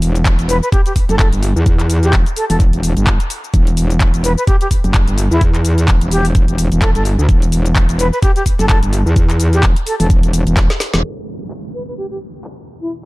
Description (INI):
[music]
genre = bass house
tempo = 128 BPM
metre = 4/4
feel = swing 57% on 16ths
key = E minor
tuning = A4 = 440 Hz
[part]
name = metallic wobble bass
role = bass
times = 0.0-11.0 s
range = E1 to E2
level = -14 LUFS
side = equal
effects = chorus, overdrive, sidechain pumping
[part]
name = garage drum kit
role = drums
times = 0.0-12.8 s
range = crash cymbal, handclaps, hi-hat, shaker, snare drum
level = -23 LUFS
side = left 1 dB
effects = none
[part]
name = electronic kick drum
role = drums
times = 0.3-10.7 s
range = none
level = -13 LUFS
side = equal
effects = none
[part]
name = breathy mellow silver concert flute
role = melody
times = 0.5-12.9 s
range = E4 to B4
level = -21 LUFS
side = equal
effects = ping-pong delay
[part]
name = deep dark ambient pad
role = sustained chords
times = 12.4-13.1 s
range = E3 to B4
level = -45 LUFS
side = right 1 dB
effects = chorus, built-in reverb, sidechain pumping
[part]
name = downlifter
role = sound effects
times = 11.1-13.1 s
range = none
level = -31 LUFS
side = right 2 dB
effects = none
[sound]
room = digital ambience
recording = dark, warm production, low-pass filter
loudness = -11 LUFS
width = side -21 dB against mid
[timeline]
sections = 0.0-11.0 A section; 11.0-13.1 B section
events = drum fill 10.6-11.0; band accent 10.9; filter sweep on ambient pad 11.0-13.1; filter sweep 11.0-13.1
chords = 0.0 N.C.; 11.0 E5